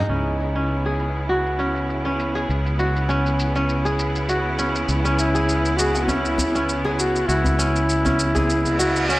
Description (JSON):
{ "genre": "organic downtempo", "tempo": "100 BPM", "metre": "4/4", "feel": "swing 54% on 16ths", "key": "C# minor", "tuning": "A4 = 440 Hz", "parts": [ { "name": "bright studio string section", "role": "sustained chords", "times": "0.0-9.2 s", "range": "C#3 to E4", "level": "-27 LUFS", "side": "right 1 dB", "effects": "none" }, { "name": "kora", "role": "arpeggios", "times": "0.0-9.2 s", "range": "C#4 to G#4", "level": "-24 LUFS", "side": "equal", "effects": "low-pass filter, tape echo" }, { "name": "fretless electric bass", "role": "bass", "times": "0.1-9.2 s", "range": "C#2", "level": "-24 LUFS", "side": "equal", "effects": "none" }, { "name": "shaker", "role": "drums", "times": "0.1-9.2 s", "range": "none", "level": "-30 LUFS", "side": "equal", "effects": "low-pass filter on hats, low-pass filter on perc, low-pass filter on toms, low-pass filter on snare, low-pass filter on room" }, { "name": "djembe", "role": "percussion", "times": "4.9-9.1 s", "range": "none", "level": "-28 LUFS", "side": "equal", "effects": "none" }, { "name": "warm duduk", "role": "melody", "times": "5.2-9.2 s", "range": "C#4 to G#4", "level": "-24 LUFS", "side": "left 1 dB", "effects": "tape echo" }, { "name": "reverse cymbal", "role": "sound effects", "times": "8.7-9.2 s", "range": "none", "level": "-24 LUFS", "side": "right 2 dB", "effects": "none" } ], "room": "light reverb, small room ambience", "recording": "dry, gritty hardware recording, cassette tape", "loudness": "-19 LUFS", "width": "side -18 dB against mid", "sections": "0.1-9.2 A section", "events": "filter sweep on drum 0.1-9.2; reverse cymbal 8.7-9.2", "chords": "0.1 C#m7" }